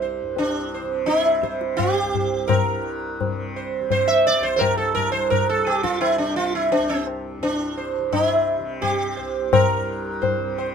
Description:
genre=indian classical, Hindustani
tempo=85 BPM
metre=5/4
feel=straight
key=C raga khamaj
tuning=A4 = 440 Hz
part: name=sitar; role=melody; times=0.0-10.7 s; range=C4 to E5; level=-21 LUFS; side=right 2 dB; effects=none
part: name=tanpura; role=drone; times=0.0-10.7 s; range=C2 to C3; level=-32 LUFS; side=left 2 dB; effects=none
part: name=tabla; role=percussion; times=0.4-10.7 s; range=none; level=-23 LUFS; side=left 5 dB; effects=none
room=light reverb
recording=minimal, uncompressed stereo recording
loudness=-19 LUFS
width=side -7 dB against mid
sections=0.0-10.7 A section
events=none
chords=none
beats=0.37 1.08 1.79 | 2.49 3.20 3.91 4.61 5.32 | 6.02 6.73 7.43 8.13 8.83 | 9.53 10.23

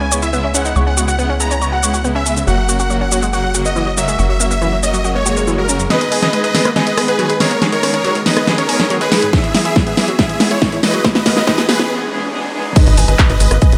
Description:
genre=uplifting trance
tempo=140 BPM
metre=4/4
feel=straight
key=G# minor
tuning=A4 = 441 Hz
part: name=supersaw chords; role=melody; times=0.0-13.8 s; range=E4 to A#5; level=-21 LUFS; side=equal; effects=lush chorus, sidechain pumping, dub echo
part: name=rich symphonic string section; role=sustained chords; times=0.0-12.7 s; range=C#3 to G#4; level=-24 LUFS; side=equal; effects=sidechain pumping, low-pass filter
part: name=analog pluck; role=arpeggios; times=0.0-13.8 s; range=F#2 to C#5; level=-24 LUFS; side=equal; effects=chorus, cassette tape, sidechain pumping, dub echo
part: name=tight sequencer bass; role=bass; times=0.0-5.9, 12.9-13.8 s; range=F#1 to C#2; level=-21 LUFS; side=equal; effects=sidechain pumping
part: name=big-room dance drum kit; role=drums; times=0.1-13.8 s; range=crash cymbal, handclaps, hi-hat, rim click, shaker, snare drum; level=-20 LUFS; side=equal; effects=sidechain pumping on perc, sidechain pumping on hats, sidechain pumping on cymbals
part: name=swell, riser and impact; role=sound effects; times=5.2-13.8 s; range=none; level=-28 LUFS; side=equal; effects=none
part: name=electronic kick drum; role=drums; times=9.3-13.7 s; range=none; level=-16 LUFS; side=equal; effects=none
room=light reverb, digital ambience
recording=high-pass filter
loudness=-15 LUFS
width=mono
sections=0.0-5.9 A section; 5.9-12.8 B section; 12.8-13.8 C section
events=filter sweep on synth arpeggio sound 0.0-5.9; swell 5.2-5.9; build-up 5.9-12.8; drum fill 5.9-11.9; break 11.9-12.8; drop 12.8-13.8; impact 12.8-13.8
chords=0.0 C#m7; 2.5 F#; 5.9 G#m; 9.3 E; 12.8 G#m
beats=0.33 | 0.76 1.19 1.62 2.05 | 2.47 2.90 3.33 3.76 | 4.19 4.62 5.05 5.47 | 5.90 6.33 6.76 7.19 | 7.62 8.05 8.47 8.90 | 9.33 9.76 10.19 10.62 | 11.05 11.47 11.90 12.33 | 12.76 13.19 13.62

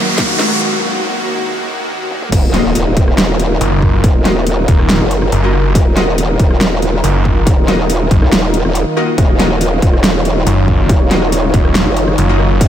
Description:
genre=heavy wobble dubstep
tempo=140 BPM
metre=4/4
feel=half-time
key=Eb minor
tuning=A4 = 444 Hz
part: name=clear cello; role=melody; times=0.0-0.6 s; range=Gb3 to Ab3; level=-26 LUFS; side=equal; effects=analog delay
part: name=supersaw chords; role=sustained chords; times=0.0-12.7 s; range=Eb2 to Db5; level=-18 LUFS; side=equal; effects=sidechain pumping, low-pass filter
part: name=riser and impact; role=sound effects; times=0.0-4.0 s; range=none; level=-22 LUFS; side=equal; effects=none
part: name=dubstep drum kit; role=drums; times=0.2-12.7 s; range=crash cymbal, hi-hat, rim click, snare drum, toms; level=-19 LUFS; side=equal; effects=high-pass filter on snare, high-pass filter on hats, high-pass filter on toms, high-pass filter on cymbals
part: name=electronic kick drum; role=drums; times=0.2-12.7 s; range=none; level=-12 LUFS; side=equal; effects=none
part: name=growl bass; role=bass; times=2.3-12.7 s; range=Eb1 to Db2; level=-15 LUFS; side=equal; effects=chorus, overdrive
part: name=orchestra-hit-like synth stab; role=stabs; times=2.5-12.5 s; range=Bb3 to Eb5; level=-22 LUFS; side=left 2 dB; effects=built-in reverb, analog delay
part: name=snarling distorted saw bass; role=bass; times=3.6-12.6 s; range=Eb1 to Gb1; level=-13 LUFS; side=equal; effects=distortion, overdrive
room=light reverb, digital ambience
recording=high-pass filter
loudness=-10 LUFS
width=side -10 dB against mid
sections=0.0-2.3 A section; 2.3-12.7 B section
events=build-up 0.0-2.3; drum fill 0.0-0.6, 2.1; riser 0.0-0.6; filter sweep on cello 0.0-2.3; break 0.6-2.3; drop 2.3-12.7; impact 2.3-4.0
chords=0.0 Ebm; 2.3 Ebmadd9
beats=0.18 | 0.61 1.04 1.47 1.90 | 2.32 2.75 3.18 3.61 | 4.04 4.47 4.89 5.32 | 5.75 6.18 6.61 7.04 | 7.47 7.89 8.32 8.75 | 9.18 9.61 10.04 10.47 | 10.89 11.32 11.75 12.18 | 12.61

